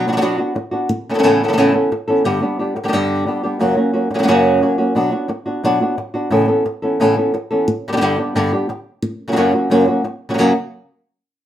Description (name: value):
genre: flamenco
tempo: 177 BPM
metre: 4/4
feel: straight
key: unclear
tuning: A4 = 439 Hz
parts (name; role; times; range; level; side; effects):
- flamenco guitar; solo; 0.0-10.5 s; F#2 to A4; -14 LUFS; equal; none
room: wet studio reverb, RT60 0.6 s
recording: rough home demo mix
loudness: -15 LUFS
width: side -11 dB against mid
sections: 0.0-10.4 A section; 10.4-11.5 B section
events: none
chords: 0.0 Bm; 0.9 Aadd9; 2.2 G; 3.6 F#; 5.0 Bm; 6.3 Aadd9; 7.7 G; 9.0 F#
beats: 0.22 0.56 | 0.90 1.23 1.57 1.91 | 2.25 2.59 2.93 3.27 | 3.60 3.94 4.28 4.62 | 4.96 5.30 5.64 5.98 | 6.32 6.65 6.99 7.33 | 7.67 8.01 8.35 8.68 | 9.02 9.36 9.70 10.04 | 10.38